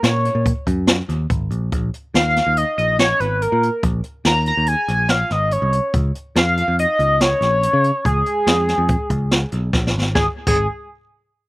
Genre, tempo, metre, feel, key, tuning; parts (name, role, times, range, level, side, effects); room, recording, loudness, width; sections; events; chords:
progressive instrumental, band music in an uneven meter; 142 BPM; 5/4; straight; A4 = 438 Hz
sync lead; melody; 0.0-10.7 s; G#4 to A#5; -18 LUFS; equal; chorus, slapback echo
picked electric bass; bass; 0.0-10.7 s; G#1 to C#3; -20 LUFS; equal
jazz brush drum kit; drums; 0.0-10.6 s; crash cymbal, hi-hat, kick drum, snare drum; -20 LUFS; equal
little or no reverb; recorded outdoors, with no room sound; -16 LUFS; side -20 dB against mid
0.0-10.2 A section; 10.2-11.5 B section
drum fill 9.7-10.2
0.0 F#sus2; 1.7 A#m7; 5.9 C#add9; 10.2 N.C.